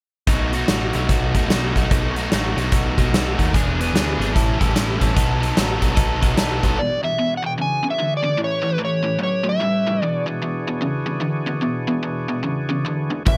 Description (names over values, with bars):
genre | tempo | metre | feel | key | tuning
blues rock power trio and southern rock | 148 BPM | 4/4 | swing 62% on 8ths | E mixolydian | A4 = 440 Hz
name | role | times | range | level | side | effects
overdriven electric guitar | riff | 0.3-13.4 s | E2 to A4 | -25 LUFS | equal | none
overdriven picked electric bass | bass | 0.3-6.8, 13.3-13.4 s | E1 to D#2 | -26 LUFS | equal | none
huge arena drum kit | drums | 0.3-6.7, 13.3-13.4 s | hi-hat, kick drum, snare drum | -22 LUFS | equal | none
overdriven tonewheel organ | sustained chords | 6.7-13.4 s | A2 to B4 | -32 LUFS | equal | slow rotary speaker
overdriven slide guitar | melody | 6.8-10.3, 13.3-13.4 s | B4 to G#5 | -24 LUFS | equal | none
room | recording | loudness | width
light reverb | none | -20 LUFS | mono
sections
0.3-6.8 A section; 6.8-13.4 B section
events
none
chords
0.3 B7; 3.5 E7; 4.3 A7; 5.2 B7; 6.8 E7; 8.4 A7; 10.0 E7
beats
| 0.27 0.68 1.09 1.50 | 1.90 2.31 2.72 3.13 | 3.53 3.94 4.35 4.75 | 5.16 5.57 5.97 6.38 | 6.79 7.19 7.60 8.00 | 8.41 8.81 9.22 9.62 | 10.03 10.44 10.84 11.25 | 11.65 12.06 12.46 12.87 | 13.27